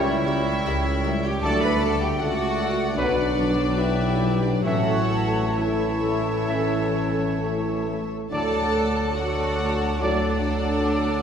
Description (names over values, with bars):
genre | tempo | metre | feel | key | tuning
classical, slow romantic movement for symphony orchestra | 64-79 BPM | 4/4 | rubato | D major | A4 = 440 Hz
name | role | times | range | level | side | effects
warm symphonic violin section | melody | 0.0-11.2 s | D5 to B5 | -33 LUFS | left 2 dB | none
clear oboe | second line | 0.0-11.2 s | C#5 to D5 | -34 LUFS | right 1 dB | none
concert flute | second line | 0.0-11.2 s | F#5 to A5 | -34 LUFS | right 1 dB | none
dark clarinet | second line | 0.0-11.2 s | A4 to B4 | -33 LUFS | left 1 dB | none
mellow bassoon | accompaniment | 0.0-11.2 s | E3 to A3 | -32 LUFS | right 1 dB | none
clear trombone section | sustained chords | 0.0-10.3 s | F#2 to G3 | -34 LUFS | equal | none
warm French horn section | sustained chords | 0.0-10.3 s | A3 to E4 | -32 LUFS | left 3 dB | none
concert harp | arpeggios | 0.0-11.2 s | A2 to B4 | -31 LUFS | left 4 dB | none
clear trumpet | stabs | 0.0-10.3 s | B4 to E5 | -32 LUFS | right 2 dB | none
mellow tuba | bass | 0.0-11.2 s | A1 to D2 | -30 LUFS | equal | none
rich symphonic cello section | bass | 0.0-11.2 s | D4 to B4 | -29 LUFS | right 1 dB | none
warm symphonic double bass section | bass | 0.0-11.2 s | A1 to D2 | -30 LUFS | right 1 dB | none
warm symphonic violin section | second line | 0.3-11.2 s | A4 to F#5 | -34 LUFS | left 4 dB | none
dark studio viola section | accompaniment | 0.3-11.2 s | G3 to A4 | -31 LUFS | equal | none
room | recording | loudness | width
wet scoring stage reverb, RT60 1.6 s | heard from further back in the room | -21 LUFS | side -7 dB against mid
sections
0.0-11.2 A section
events
none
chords
0.0 C#dim7; 1.4 D; 3.0 Bm; 4.7 A; 8.3 D